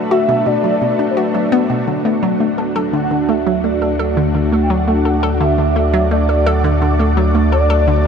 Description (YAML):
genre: ambient, sequencer-driven space music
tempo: 85 BPM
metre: 4/4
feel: straight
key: unclear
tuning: A4 = 443 Hz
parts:
  - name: string machine, full ensemble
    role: sustained chords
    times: 0.0-8.1 s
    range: A3 to D5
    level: -18 LUFS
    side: equal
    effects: phaser, ensemble chorus
  - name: hollow square pluck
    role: riff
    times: 0.0-8.0 s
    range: B2 to A4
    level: -18 LUFS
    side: equal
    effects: chorus, phaser, tape echo
  - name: bubbling stepped-filter texture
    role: texture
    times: 0.0-1.9 s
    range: A5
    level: -34 LUFS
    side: equal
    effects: chorus, built-in reverb
  - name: expressive synth lead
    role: melody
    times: 0.1-8.1 s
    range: B4 to G5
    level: -20 LUFS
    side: equal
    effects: ensemble chorus, tape echo
  - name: round analog bass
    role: bass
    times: 1.9-8.1 s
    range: D2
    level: -17 LUFS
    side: equal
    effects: none
room: wet huge ambient reverb, RT60 8.5 s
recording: none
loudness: -13 LUFS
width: side -6 dB against mid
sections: 0.0-1.9 A section; 1.9-8.1 B section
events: none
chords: 0.0 Bm7; 1.9 D